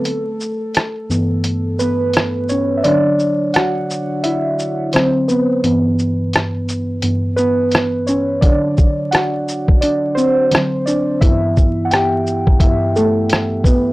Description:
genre	lo-fi hip hop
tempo	86 BPM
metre	4/4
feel	swing 57% on 16ths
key	unclear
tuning	A4 = 440 Hz
part	muted felt-like synth keys	accompaniment	0.0-13.9 s	G2 to G5	-15 LUFS	equal	chorus, low-pass filter
part	lo-fi sampler-style drum kit	drums	0.1-13.8 s	hi-hat, kick drum, rim click, shaker	-15 LUFS	equal	none
room	moderate studio ambience, RT60 0.5 s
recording	dry, gritty hardware recording, vinyl crackle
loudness	-14 LUFS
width	side -19 dB against mid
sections	0.0-13.9 A section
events	break 0.0-8.4; synth keys solo 0.0-13.9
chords	0.1 G69; 2.8 Dmaj9; 4.9 D7; 5.6 G6; 8.4 Dmaj7; 10.5 D7; 11.2 G69

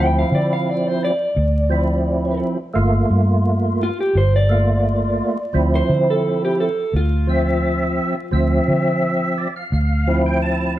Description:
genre	straight-eighth soul blues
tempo	86 BPM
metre	4/4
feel	straight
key	D minor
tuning	A4 = 440 Hz
part	electric guitar through a small old amp	melody	0.0-9.0 s	F4 to G5	-22 LUFS	right 1 dB	spring reverb
part	percussive tonewheel organ	accompaniment	0.0-10.8 s	F3 to A5	-20 LUFS	right 1 dB	slow rotary speaker, chorus vibrato
part	vintage muted fingered electric bass	bass	0.0-10.8 s	G1 to D3	-19 LUFS	equal	none
room	moderate stone room reverb, RT60 1.2 s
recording	band playing live in one room, vinyl crackle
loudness	-16 LUFS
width	side -14 dB against mid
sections	0.0-10.8 A section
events	tonewheel organ fill 9.0-10.8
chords	0.0 Dm7; 2.8 Gm7; 5.5 Dm7

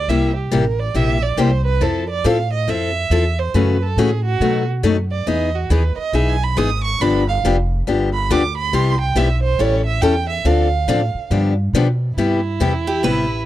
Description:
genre	acoustic string swing (jazz manouche)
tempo	139 BPM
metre	4/4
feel	swing 63% on 8ths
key	C major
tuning	A4 = 441 Hz
part	warm violin	second line	0.0-13.5 s	E4 to D#6	-22 LUFS	right 7 dB	none
part	upright bass	bass	0.0-13.5 s	F1 to B2	-19 LUFS	equal	none
part	picked steel-string acoustic guitar	accompaniment	0.1-13.3 s	B2 to A4	-19 LUFS	left 4 dB	none
part	picked steel-string acoustic guitar	melody	12.9-13.4 s	G4 to B4	-20 LUFS	right 1 dB	none
room	small room ambience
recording	dry, close 1970s-style studio recording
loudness	-15 LUFS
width	side -14 dB against mid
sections	0.0-12.2 A section; 12.2-13.5 B section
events	violin solo 0.0-12.2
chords	0.1 C7; 1.8 Fmaj7; 3.6 F#m7; 4.4 B7; 5.3 Emaj7; 7.0 G7; 8.7 Cmaj7; 9.6 A7; 10.5 Dm7; 11.3 G7; 12.2 Cmaj7

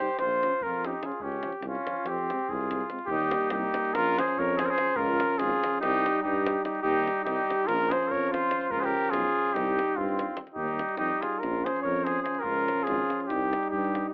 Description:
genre	balkan folk, Balkan brass band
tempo	289 BPM (eighths)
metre	9/8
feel	straight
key	unclear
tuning	A4 = 440 Hz
part	warm flugelhorn	melody	0.0-14.1 s	F4 to Db5	-28 LUFS	equal	plate reverb
part	mellow trumpet	second line	0.0-14.1 s	C4 to Bb4	-31 LUFS	equal	plate reverb
part	mellow euphonium	accompaniment	0.0-14.1 s	Bb3 to Eb4	-36 LUFS	equal	plate reverb
part	warm trombone	accompaniment	0.0-14.1 s	F3 to Ab3	-38 LUFS	right 1 dB	plate reverb
part	mellow tuba	bass	0.2-14.1 s	Ab1 to G2	-33 LUFS	equal	none
part	davul	percussion	0.2-14.0 s	none	-39 LUFS	left 1 dB	none
room	moderate studio ambience, RT60 0.5 s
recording	rough home demo mix, AM radio sound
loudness	-25 LUFS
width	side -28 dB against mid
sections	0.0-3.1 A section; 3.1-14.1 A section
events	none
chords	0.2 Bbm; 1.2 Db; 2.1 Fm; 3.1 Eb; 3.9 Bbm; 5.0 Db; 5.8 Cm; 7.7 Bbm; 8.7 Db; 9.5 Cm; 10.6 Eb; 11.4 Bbm; 12.4 Db; 13.3 Cm

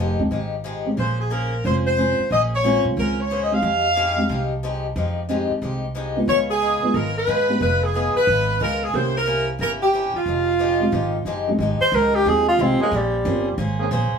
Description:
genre	jazz, big band swing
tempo	181 BPM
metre	4/4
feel	swing 64% on 8ths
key	F minor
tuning	A4 = 440 Hz
part	picked swing-style acoustic guitar	accompaniment	0.0-14.1 s	C3 to C5	-28 LUFS	left 4 dB	none
part	upright bass	bass	0.0-14.2 s	F1 to Ab2	-25 LUFS	right 1 dB	none
part	dark upright piano	accompaniment	0.2-13.4 s	F2 to Ab4	-24 LUFS	right 2 dB	none
part	warm saxophone section	melody	1.0-11.3 s	F4 to F5	-20 LUFS	equal	none
part	breathy tenor saxophone	melody	11.8-13.6 s	G3 to C5	-18 LUFS	right 1 dB	none
part	bright trombone section	sustained chords	12.8-13.9 s	Db3 to Ab4	-27 LUFS	right 3 dB	none
room	wet studio ambience, RT60 0.5 s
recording	band playing live in one room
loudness	-18 LUFS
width	side -6 dB against mid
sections	0.0-11.6 A section; 11.6-14.2 B section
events	tenor saxophone solo 11.6-14.2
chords	0.0 Fm9; 1.0 Bbm9; 3.6 Fm9; 6.3 Db7; 8.9 C7b9; 10.3 Fm9; 12.9 Bbm9

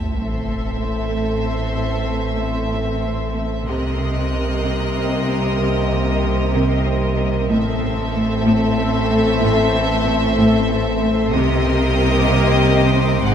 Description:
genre	cinematic, suspense film score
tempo	94 BPM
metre	3/4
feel	straight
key	A phrygian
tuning	A4 = 440 Hz
part	rich chamber violin section	melody	0.0-13.3 s	Eb5 to F#5	-26 LUFS	left 3 dB	none
part	rich chamber violin section	second line	0.0-13.3 s	G#4 to Bb4	-28 LUFS	right 1 dB	none
part	dark chamber viola section	accompaniment	0.0-13.3 s	C4	-27 LUFS	left 2 dB	none
part	bright trombone section	sustained chords	0.0-13.3 s	Eb3 to Bb3	-28 LUFS	right 4 dB	none
part	bubbling stepped-filter texture	sustained chords	0.1-13.3 s	G#4 to C6	-29 LUFS	equal	chorus, built-in reverb
part	dark French horn section	sustained chords	0.0-13.3 s	C4 to A4	-26 LUFS	left 8 dB	none
part	clear symphonic cello section	riff	0.0-13.3 s	G#2 to C4	-24 LUFS	equal	none
part	rich chamber cello section	bass	0.0-13.3 s	G#2 to C3	-23 LUFS	right 2 dB	none
part	warm chamber double bass section	bass	0.0-13.3 s	G#1 to C2	-25 LUFS	right 3 dB	none
part	soft dub sub bass	drone	0.0-13.3 s	G#1 to C2	-26 LUFS	equal	none
part	sub drop and reverse cymbal	sound effects	0.0-1.8, 13.3 s	none	-28 LUFS	equal	none
part	rich chamber violin section	texture	3.7-7.2, 11.3-13.3 s	C6 to F#6	-31 LUFS	equal	none
room	moderate concert hall reverb, RT60 2.0 s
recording	none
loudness	-16 LUFS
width	side -8 dB against mid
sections	0.0-13.3 A section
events	impact 0.0-1.8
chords	0.0 Am; 3.7 Cm7; 7.5 Am; 11.3 Cm7

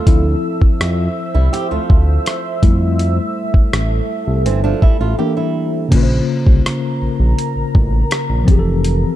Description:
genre	contemporary R&B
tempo	82 BPM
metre	4/4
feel	straight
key	unclear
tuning	A4 = 440 Hz
part	tine electric piano	accompaniment	0.0-9.2 s	Db3 to C5	-21 LUFS	left 3 dB	medium stereo tremolo
part	deep dark ambient pad	sustained chords	0.0-9.2 s	A4 to E6	-24 LUFS	right 1 dB	chorus, built-in reverb, sidechain pumping
part	flamenco guitar	arpeggios	0.0-5.9 s	E3 to G4	-23 LUFS	right 7 dB	slapback echo
part	smooth synth bass	bass	0.1-9.0 s	F1 to F2	-16 LUFS	equal	none
part	dusty soul sampler-style drum kit	drums	0.1-9.0 s	crash cymbal, hi-hat, kick drum, rim click	-13 LUFS	equal	none
room	digital ambience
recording	dark, warm production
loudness	-13 LUFS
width	side -13 dB against mid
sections	0.0-5.9 A section; 5.9-9.2 B section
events	tine electric piano solo 0.0-5.9; break 5.2-5.9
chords	0.1 Dm9; 2.6 Fmaj7; 5.2 C7; 5.9 Bbmadd9; 8.5 Fmaj7

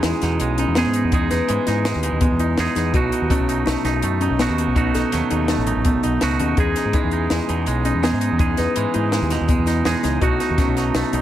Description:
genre	math rock and midwest emo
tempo	165 BPM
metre	5/4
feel	straight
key	E major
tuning	A4 = 440 Hz
part	twangy electric guitar	accompaniment	0.0-11.2 s	E2 to G#4	-23 LUFS	right 6 dB	plate reverb
part	kalimba	arpeggios	0.0-11.2 s	B3 to B4	-22 LUFS	left 3 dB	plate reverb
part	growling fingered electric bass	bass	0.0-11.2 s	A1 to G#2	-23 LUFS	equal	overdrive
part	compact cocktail drum kit	drums	0.0-11.2 s	hi-hat, kick drum, snare drum	-23 LUFS	equal	none
room	light reverb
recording	none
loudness	-17 LUFS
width	side -12 dB against mid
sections	0.0-11.2 A section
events	none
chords	0.0 Emaj7; 2.9 B7; 6.6 Emaj7; 10.2 B7

